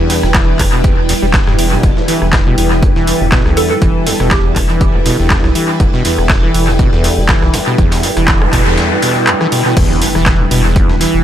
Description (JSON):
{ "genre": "acid house", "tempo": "121 BPM", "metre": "4/4", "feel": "swing 55% on 16ths", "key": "E minor", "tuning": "A4 = 440 Hz", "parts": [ { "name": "string machine, full ensemble", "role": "sustained chords", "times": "0.0-11.2 s", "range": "G3 to B4", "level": "-21 LUFS", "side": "equal", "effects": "phaser, ensemble chorus, sidechain pumping" }, { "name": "acid bass, saw", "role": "riff", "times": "0.0-11.2 s", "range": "D2 to G3", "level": "-17 LUFS", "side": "equal", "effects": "overdrive, analog chorus, analog delay" }, { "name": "granular cloud pad", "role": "texture", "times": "0.0-11.2 s", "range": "E4 to G5", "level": "-19 LUFS", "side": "right 1 dB", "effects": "built-in reverb, sidechain pumping" }, { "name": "dusty soul sampler-style drum kit", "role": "drums", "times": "0.1-11.1 s", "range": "hi-hat, snare drum", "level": "-27 LUFS", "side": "equal", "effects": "overdrive, high-pass filter on hats, high-pass filter on snare, dub echo" }, { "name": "punchy analog drum machine", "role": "drums", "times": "0.1-11.1 s", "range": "crash cymbal, handclaps, hi-hat, rim click", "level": "-18 LUFS", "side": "equal", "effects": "dub echo" }, { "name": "saturated sub bass", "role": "bass", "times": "0.2-11.2 s", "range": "E1 to B1", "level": "-17 LUFS", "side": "equal", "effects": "sidechain pumping" }, { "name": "electronic kick drum", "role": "drums", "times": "0.3-10.9 s", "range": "none", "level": "-13 LUFS", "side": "equal", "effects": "none" }, { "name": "hollow square pluck", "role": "melody", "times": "3.6-5.0 s", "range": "G4 to A4", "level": "-20 LUFS", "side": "right 5 dB", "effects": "wide subtle chorus, analog delay" }, { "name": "noise sweep and impact", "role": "sound effects", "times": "8.2-11.2 s", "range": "none", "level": "-20 LUFS", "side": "left 1 dB", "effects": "none" } ], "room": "light reverb", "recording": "echo-heavy mix", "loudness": "-9 LUFS", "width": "side -11 dB against mid", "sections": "0.0-9.8 A section; 9.8-11.2 B section", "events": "noise sweep 8.2-9.8; drop 9.8-11.2; impact 9.8-11.2", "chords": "0.0 Em7", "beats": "0.35 0.84 1.34 | 1.83 2.33 2.83 3.32 | 3.82 4.31 4.81 5.30 | 5.80 6.30 6.79 7.29 | 7.78 8.28 8.78 9.27 | 9.77 10.26 10.76" }